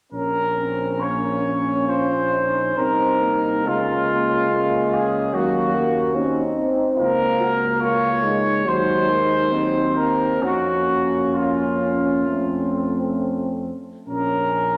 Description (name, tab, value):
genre	classical, hymn-like piece for brass band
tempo	64-74 BPM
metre	4/4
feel	rubato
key	Bb minor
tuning	A4 = 440 Hz
part	mellow trumpet section	melody	0.1-14.8 s	F4 to Db5	-24 LUFS	equal	none
part	dark French horn section	second line	0.1-14.8 s	Bb3 to Gb4	-29 LUFS	equal	none
part	bright trombone section	accompaniment	0.1-14.8 s	Gb3 to Db4	-31 LUFS	equal	none
part	mellow euphonium	accompaniment	0.1-13.6 s	Gb3 to Db4	-26 LUFS	equal	none
part	mellow tuba	bass	0.1-14.8 s	Bb1 to F2	-33 LUFS	equal	none
room	wet concert hall reverb, RT60 2.0 s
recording	none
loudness	-21 LUFS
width	mono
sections	0.1-14.8 A section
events	none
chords	0.1 Bbm; 3.7 Bbm/Db; 5.3 Ebm7; 7.0 Bbm/Db; 8.7 Cm7b5/Eb; 10.4 Bbm/F; 12.3 F; 14.1 Bbm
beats	| 0.13 1.01 1.88 2.77 | 3.66 4.51 5.34 6.15 | 6.98 7.81 8.65 9.53 | 10.41 11.33 12.27 13.17 | 14.07